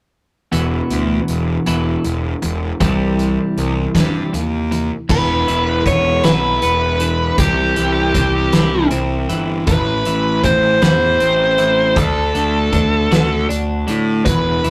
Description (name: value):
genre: quiet-loud alternative rock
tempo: 52 BPM (dotted quarters)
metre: 6/8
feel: straight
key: unclear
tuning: A4 = 439 Hz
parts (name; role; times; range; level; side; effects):
- twelve-string electric guitar; arpeggios; 0.5-14.7 s; E2 to F#4; -23 LUFS; equal; slapback echo
- fuzz picked electric bass; bass; 0.5-14.7 s; E1 to A2; -22 LUFS; equal; overdrive
- loose indie drum kit; drums; 0.5-14.7 s; crash cymbal, hi-hat, kick drum, snare drum; -21 LUFS; equal; none
- bluesy overdriven lead guitar; melody; 5.1-14.7 s; G4 to C#5; -19 LUFS; equal; distortion
room: moderate small room reverb, RT60 0.5 s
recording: rough rehearsal-room recording, tube saturation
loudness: -16 LUFS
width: mono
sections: 0.5-5.1 A section; 5.1-14.7 B section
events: none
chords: 0.5 E5; 2.8 C; 5.1 E5; 7.4 C; 9.7 Am; 12.0 D